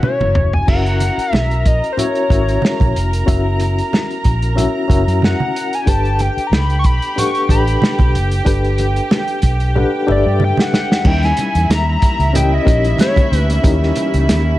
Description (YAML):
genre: lush 1970s-style soul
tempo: 93 BPM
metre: 4/4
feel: swing 54% on 16ths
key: unclear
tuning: A4 = 440 Hz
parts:
  - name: hollow square lead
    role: melody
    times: 0.0-13.5 s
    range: C5 to C#6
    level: -20 LUFS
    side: left 2 dB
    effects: chorus
  - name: warm studio violin section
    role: second line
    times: 0.0-14.6 s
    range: C#4 to A#5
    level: -24 LUFS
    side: right 2 dB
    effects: none
  - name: reed electric piano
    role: accompaniment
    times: 0.0-14.6 s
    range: G3 to G5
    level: -21 LUFS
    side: left 3 dB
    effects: fast tremolo
  - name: warm soul drum kit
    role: drums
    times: 0.0-14.5 s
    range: crash cymbal, hi-hat, kick drum, snare drum, toms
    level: -16 LUFS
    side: equal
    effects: none
  - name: congas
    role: percussion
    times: 0.0-14.4 s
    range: none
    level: -24 LUFS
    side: right 4 dB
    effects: none
  - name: vintage muted fingered electric bass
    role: bass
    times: 0.2-14.6 s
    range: E#1 to G2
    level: -16 LUFS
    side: equal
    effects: none
  - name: dark studio string section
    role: sustained chords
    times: 11.0-14.6 s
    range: E3 to C#4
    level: -27 LUFS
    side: right 1 dB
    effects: none
room: small room ambience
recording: dark, warm production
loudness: -13 LUFS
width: side -16 dB against mid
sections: 0.7-11.1 A section; 11.1-14.6 B section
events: drum fill 0.0-0.7, 9.8-11.1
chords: 0.0 F#7; 5.9 Gmaj9; 11.1 D#7b9